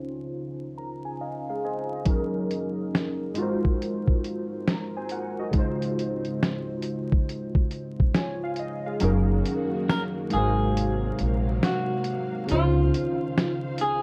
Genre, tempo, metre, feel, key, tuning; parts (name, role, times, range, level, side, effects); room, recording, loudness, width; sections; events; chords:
lo-fi hip hop; 69 BPM; 4/4; swing 64% on 16ths; Db major; A4 = 440 Hz
warbly lo-fi synth keys; accompaniment; 0.0-14.0 s; Db3 to Bb5; -31 LUFS; equal; chorus, low-pass filter
lo-fi sampler-style drum kit; drums; 2.1-14.0 s; hi-hat, kick drum, snare drum; -27 LUFS; equal; vintage 12-bit sampler grit
string machine, violas; sustained chords; 9.0-14.0 s; C3 to F5; -37 LUFS; equal; ensemble chorus, low-pass filter
upright bass; bass; 9.0-12.9 s; Gb1 to Db2; -27 LUFS; equal
clean electric guitar; melody; 9.9-14.0 s; F4 to Bb4; -30 LUFS; equal; low-pass filter
moderate studio reverb, RT60 0.6 s; dark, warm production, vinyl crackle; -26 LUFS; mono
0.0-9.0 A section; 9.0-14.0 B section
filter sweep on synth keys 0.0-9.0; synth keys fill 0.3-2.1, 7.7-9.0; kick muted 9.0-14.0
0.0 Dbmaj9; 2.1 Gb6; 3.4 Ab13; 5.5 Dbmaj9; 9.0 Gb6; 10.3 Ab13; 12.5 Dbmaj9